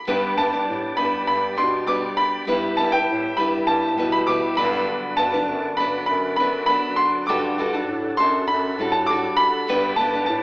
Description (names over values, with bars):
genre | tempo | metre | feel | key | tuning
acoustic pop | 100 BPM | 4/4 | straight | G major | A4 = 440 Hz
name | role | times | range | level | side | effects
bright upright piano | melody | 0.0-10.4 s | G5 to D6 | -21 LUFS | equal | none
nylon-string guitar | accompaniment | 0.1-10.4 s | G2 to B4 | -24 LUFS | equal | none
percussive tonewheel organ | sustained chords | 0.1-10.4 s | D3 to E5 | -31 LUFS | equal | overdrive, fast rotary speaker
mellow bass clarinet | bass | 0.1-10.4 s | F#2 to B2 | -28 LUFS | equal | none
room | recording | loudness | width
wet recital hall reverb, RT60 1.5 s | recorded in a church or concert hall, AM radio sound | -19 LUFS | side -25 dB against mid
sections
0.1-10.4 A section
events
none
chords
0.1 G; 2.5 Em/G; 4.6 Bm; 7.3 D; 9.7 G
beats
| 0.08 0.68 1.28 1.88 | 2.48 3.08 3.68 4.29 | 4.89 5.49 6.09 6.69 | 7.29 7.89 8.49 9.10 | 9.70 10.30